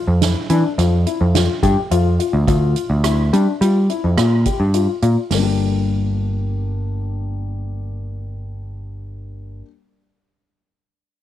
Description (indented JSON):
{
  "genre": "progressive instrumental, band music in an uneven meter",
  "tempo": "106 BPM",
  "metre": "5/4",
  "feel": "straight",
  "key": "G dorian",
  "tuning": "A4 = 440 Hz",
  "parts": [
    { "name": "overdriven picked electric bass", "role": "bass", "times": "0.1-9.6 s", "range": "G1 to G3", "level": "-17 LUFS", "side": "right 1 dB", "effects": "none" },
    { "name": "dark concert grand piano", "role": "arpeggios", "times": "0.2-9.7 s", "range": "G3 to G4", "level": "-22 LUFS", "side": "left 10 dB", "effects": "none" },
    { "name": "soft-mallet drum kit", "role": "drums", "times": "0.2-5.4 s", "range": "hi-hat, kick drum, rim click, snare drum", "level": "-24 LUFS", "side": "right 4 dB", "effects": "none" }
  ],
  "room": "light reverb",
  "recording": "1960s-style stereo",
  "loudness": "-15 LUFS",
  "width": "side -12 dB against mid",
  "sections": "0.0-5.3 A section; 5.3-8.1 B section",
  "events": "none",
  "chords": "0.0 G7(no3); 5.3 Gm"
}